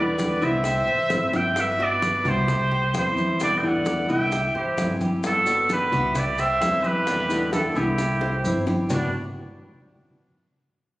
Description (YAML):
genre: latin, Cuban son and guajira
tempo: 131 BPM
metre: 4/4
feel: straight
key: G major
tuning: A4 = 440 Hz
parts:
  - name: trumpet with straight mute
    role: melody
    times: 0.0-9.1 s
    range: D4 to G5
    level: -23 LUFS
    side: right 1 dB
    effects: none
  - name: clear trumpet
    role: second line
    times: 0.0-9.1 s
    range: B3 to E5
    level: -33 LUFS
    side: equal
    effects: none
  - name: flamenco guitar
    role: accompaniment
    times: 0.0-9.1 s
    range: B2 to F#4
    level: -28 LUFS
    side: left 1 dB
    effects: none
  - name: Cuban tres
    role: arpeggios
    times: 0.0-9.1 s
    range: G3 to C5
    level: -34 LUFS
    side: right 1 dB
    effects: none
  - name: upright bass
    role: bass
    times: 0.0-9.1 s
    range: G1 to E2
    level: -29 LUFS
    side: equal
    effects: none
  - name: bongos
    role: percussion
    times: 0.2-9.0 s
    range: none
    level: -35 LUFS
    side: left 2 dB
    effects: none
  - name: congas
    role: percussion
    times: 0.2-9.0 s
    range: none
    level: -30 LUFS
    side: equal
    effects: none
  - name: maracas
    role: percussion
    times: 0.2-9.0 s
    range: none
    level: -42 LUFS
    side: left 2 dB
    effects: none
room: wet recital hall reverb, RT60 1.6 s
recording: recorded on a phone in the room, club reverb, compression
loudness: -20 LUFS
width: side -18 dB against mid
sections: 0.0-8.9 A section; 8.9-10.7 B section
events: drum fill 1.1-1.6, 8.2-8.9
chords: 0.0 Em7; 0.7 C; 1.6 Gmaj7; 2.5 C; 3.4 Em7; 4.3 C; 5.2 Gmaj7; 6.2 C; 7.1 Em7; 8.0 C; 8.9 Gmaj7(no3)